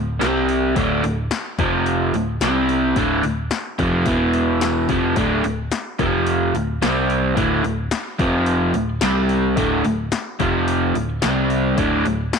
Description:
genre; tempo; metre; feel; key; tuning
classic rock; 109 BPM; 4/4; straight; D minor; A4 = 440 Hz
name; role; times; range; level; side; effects
crunchy overdriven guitar; riff; 0.0-12.3 s; D2 to C4; -18 LUFS; equal; none
picked electric bass; bass; 0.0-12.3 s; D1 to C2; -26 LUFS; equal; none
punchy analog drum machine; drums; 0.2-12.4 s; hi-hat, kick drum, snare drum; -25 LUFS; left 4 dB; none
room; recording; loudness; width
light reverb; 1960s-style stereo; -17 LUFS; side -6 dB against mid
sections
0.0-12.4 A section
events
none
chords
0.2 C5; 0.8 D5; 1.6 F5; 2.1 D5; 2.4 C5; 3.0 Dm; 4.1 E5; 4.9 Dm; 6.0 F5; 6.5 D5; 6.8 C5; 7.4 D5; 8.2 F5; 8.7 D5; 9.0 C5; 9.6 D5; 10.4 F5; 10.9 D5; 11.2 C5; 11.8 D5

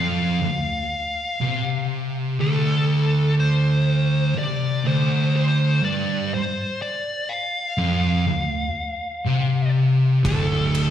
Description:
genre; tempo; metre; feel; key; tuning
stoner and doom metal; 61 BPM; 4/4; straight; D minor; A4 = 440 Hz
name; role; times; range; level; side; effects
fuzz lead guitar; melody; 0.0-10.9 s; A4 to F5; -26 LUFS; left 2 dB; wah, distortion, slapback echo, digital delay
thick fuzz guitar; riff; 0.0-10.9 s; D2 to C3; -23 LUFS; left 7 dB; distortion
thick fuzz guitar; riff; 0.0-10.9 s; D2 to C3; -22 LUFS; right 4 dB; distortion, slapback echo
fuzz fingered electric bass; bass; 10.2-10.9 s; D1; -27 LUFS; equal; overdrive
big rock drum kit; drums; 10.2-10.9 s; kick drum, ride cymbal; -26 LUFS; equal; none
room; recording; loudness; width
light reverb; live gig heard through the venue's PA, recital hall reverb; -19 LUFS; side -10 dB against mid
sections
0.0-10.9 A section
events
none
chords
0.0 Dm

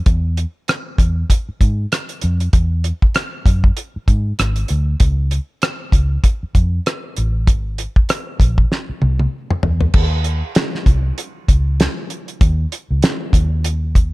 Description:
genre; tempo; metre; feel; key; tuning
lush 1970s-style soul; 97 BPM; 4/4; swing 58% on 16ths; unclear; A4 = 439 Hz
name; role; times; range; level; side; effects
vintage muted fingered electric bass; bass; 0.1-14.1 s; Ab1 to G#2; -17 LUFS; equal; none
damped 70s drum kit; drums; 0.1-14.1 s; crash cymbal, hi-hat, kick drum, rim click, snare drum, toms; -15 LUFS; equal; none
room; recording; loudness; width
little or no reverb; none; -15 LUFS; side -20 dB against mid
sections
0.0-9.9 A section; 9.9-14.1 B section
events
drum fill 8.7-9.9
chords
none

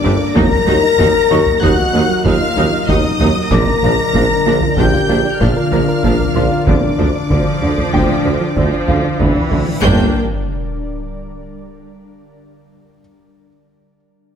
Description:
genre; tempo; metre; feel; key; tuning
cinematic, hybrid orchestral and electronic film score; 95 BPM; 5/4; straight; unclear; A4 = 438 Hz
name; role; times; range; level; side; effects
clear symphonic violin section; melody; 0.0-10.2 s; D6 to Bb6; -23 LUFS; equal; none
clear studio violin section; second line; 0.0-10.2 s; D5 to Bb5; -24 LUFS; left 3 dB; none
clear symphonic viola section; accompaniment; 0.0-10.2 s; E3 to Eb4; -22 LUFS; right 1 dB; none
ethereal airy pad; sustained chords; 0.0-10.2 s; D3 to Eb5; -22 LUFS; left 1 dB; ensemble chorus, built-in reverb
mellow French horn section; sustained chords; 0.0-10.1 s; G3 to Bb4; -19 LUFS; left 6 dB; none
soft round pluck; arpeggios; 0.0-9.8 s; D3 to Bb4; -25 LUFS; right 3 dB; none
clear tuba; bass; 0.0-10.1 s; G1 to Eb2; -21 LUFS; right 5 dB; none
rich symphonic cello section; bass; 0.0-10.2 s; Eb2 to D3; -22 LUFS; right 2 dB; none
rich symphonic double bass section; bass; 0.0-10.2 s; G1 to Eb2; -22 LUFS; right 2 dB; none
taiko ensemble; drums; 0.0-11.1 s; none; -19 LUFS; equal; none
bright concert grand piano; texture; 0.0-9.9 s; F4 to D6; -27 LUFS; left 1 dB; ping-pong delay
reverse cymbal and sub drop; sound effects; 9.6-13.0 s; none; -24 LUFS; equal; none
room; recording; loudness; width
light reverb; none; -12 LUFS; side -8 dB against mid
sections
0.0-9.8 A section; 9.8-13.0 B section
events
reverse cymbal 9.6; impact 9.8-13.0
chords
0.4 Ebm; 3.5 Bb; 6.7 Dm; 9.8 Gm

